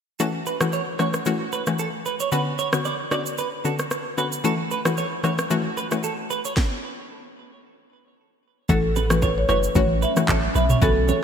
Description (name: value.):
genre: afrobeats.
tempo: 113 BPM.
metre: 4/4.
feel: swing 55% on 16ths.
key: unclear.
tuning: A4 = 440 Hz.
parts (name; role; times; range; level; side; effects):
analog pluck; accompaniment; 0.2-11.0 s; D3 to F#4; -25 LUFS; left 4 dB; chorus.
direct-recorded clean electric guitar; riff; 0.2-11.2 s; A4 to D5; -28 LUFS; right 5 dB; lush chorus, digital delay.
afro-pop drum kit; drums; 0.2-11.2 s; handclaps, kick drum, rim click, shaker, snare drum, toms; -26 LUFS; right 1 dB; none.
marimba with medium mallets; melody; 8.7-10.9 s; A4 to E5; -24 LUFS; equal; none.
granular cloud pad; sustained chords; 9.5-11.2 s; D3 to C#4; -30 LUFS; right 2 dB; built-in reverb.
punchy sub bass; bass; 8.7-11.1 s; F#1 to B1; -23 LUFS; equal; none.
congas and bongos; percussion; 8.7-11.2 s; none; -31 LUFS; right 4 dB; none.
room: moderate lush hall reverb, RT60 2.6 s.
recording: bright 1980s-style digital production.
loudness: -20 LUFS.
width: side -8 dB against mid.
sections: 0.2-8.7 A section; 8.7-11.2 B section.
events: stop 6.6-8.7.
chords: 0.2 A6; 2.3 Bmadd9; 4.4 A6; 6.6 N.C.; 8.7 A6.